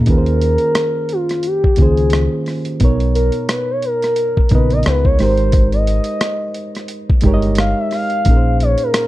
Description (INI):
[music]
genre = R&B, neo-soul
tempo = 88 BPM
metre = 4/4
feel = swing 58% on 16ths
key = unclear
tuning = A4 = 440 Hz
[part]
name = reed electric piano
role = accompaniment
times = 0.0-9.1 s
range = Bb2 to D#5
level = -20 LUFS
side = right 3 dB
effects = none
[part]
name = deep dub fingered electric bass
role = bass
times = 0.0-8.7 s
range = G1 to Eb2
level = -16 LUFS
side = equal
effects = none
[part]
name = gliding portamento lead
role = melody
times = 0.1-9.1 s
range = F4 to F5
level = -19 LUFS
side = left 1 dB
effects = chorus, tape echo
[part]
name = boom bap sampler-style drum kit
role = drums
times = 0.1-9.1 s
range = hi-hat, kick drum, rim click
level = -16 LUFS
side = equal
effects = none
[sound]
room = digital ambience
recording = dry, close 1970s-style studio recording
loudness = -13 LUFS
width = side -16 dB against mid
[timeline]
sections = 0.1-9.1 A section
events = soft synth lead solo 0.1-9.1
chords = 0.1 Eb13sus4; 2.8 Bmaj9; 5.2 Abmaj7; 8.3 Bbm11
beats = | 0.08 0.76 1.44 2.12 | 2.81 3.49 4.17 4.85 | 5.53 6.21 6.90 7.58 | 8.26 8.94